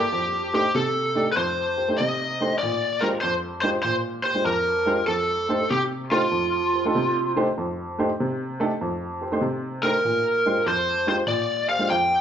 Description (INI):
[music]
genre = blues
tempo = 97 BPM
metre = 4/4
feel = swing 67% on 8ths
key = F mixolydian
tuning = A4 = 440 Hz
[part]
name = lead guitar through a small cranked amp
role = melody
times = 0.0-12.2 s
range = F4 to G5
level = -22 LUFS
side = equal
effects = overdrive
[part]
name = warm upright piano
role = accompaniment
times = 0.0-12.2 s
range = F2 to D5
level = -25 LUFS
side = right 1 dB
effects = none
[sound]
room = moderate large studio reverb, RT60 1.2 s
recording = band playing live in one room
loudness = -21 LUFS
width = side -8 dB against mid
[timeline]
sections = 0.1-12.2 A section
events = none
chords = 0.1 F13; 2.6 Bb13; 5.1 F13; 10.0 Bb13